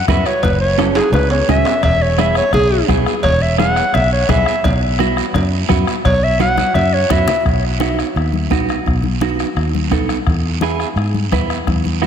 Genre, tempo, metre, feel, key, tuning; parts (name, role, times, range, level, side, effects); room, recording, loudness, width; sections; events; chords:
latin, cumbia; 171 BPM; 4/4; straight; A4 = 439 Hz
warm clarinet; melody; 0.0-7.5 s; G#4 to F#5; -17 LUFS; left 1 dB; ping-pong delay
clean electric guitar; accompaniment; 0.1-12.1 s; B3 to B4; -21 LUFS; right 8 dB
fingered electric bass; bass; 0.1-12.1 s; E1 to G#2; -18 LUFS; equal
bombo; percussion; 0.1-12.1 s; -22 LUFS; left 2 dB
congas; percussion; 0.1-12.1 s; -24 LUFS; left 5 dB
guiro; percussion; 0.1-12.1 s; -30 LUFS; right 12 dB
timbales and cowbell; percussion; 0.1-6.9 s; -26 LUFS; right 5 dB
moderate lush hall reverb, RT60 2.2 s; dreamy mix soaked in reverb; -13 LUFS; side -8 dB against mid
0.0-7.5 A section; 7.5-12.1 B section
clarinet solo 0.0-7.5; drum fill 0.8-1.8, 6.4-7.5, 11.7-12.1
0.4 F#m7; 1.8 E; 4.7 Bsus4; 7.5 B; 10.3 E